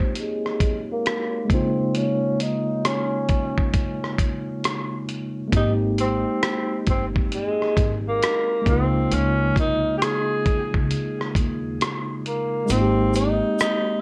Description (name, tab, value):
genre	lo-fi hip hop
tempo	67 BPM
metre	4/4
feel	swing 64% on 16ths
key	Ab major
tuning	A4 = 441 Hz
part	breathy tenor saxophone	melody	0.0-14.0 s	Ab3 to Ab4	-28 LUFS	equal	low-pass filter, analog delay
part	tine electric piano	accompaniment	0.0-14.0 s	Db3 to Db5	-28 LUFS	equal	low-pass filter
part	dusty soul sampler-style drum kit	drums	0.2-13.9 s	hi-hat, kick drum, rim click	-27 LUFS	equal	none
part	upright bass	bass	5.5-13.4 s	G1 to Eb2	-28 LUFS	equal	none
part	egg shaker	percussion	12.7-13.9 s	none	-42 LUFS	equal	none
room	moderate small room reverb, RT60 0.5 s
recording	cassette tape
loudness	-23 LUFS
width	mono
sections	0.0-12.7 A section; 12.7-14.0 B section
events	filter sweep 0.0-12.7; kick muted 12.7-14.0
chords	0.0 Abmaj7; 1.5 Db69; 5.5 Abmaj7; 8.7 Db69; 12.7 Abmaj7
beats	0.15 1.05 | 1.95 2.84 3.74 4.63 | 5.53 6.42 7.32 8.21 | 9.11 10.01 10.90 11.80 | 12.69 13.59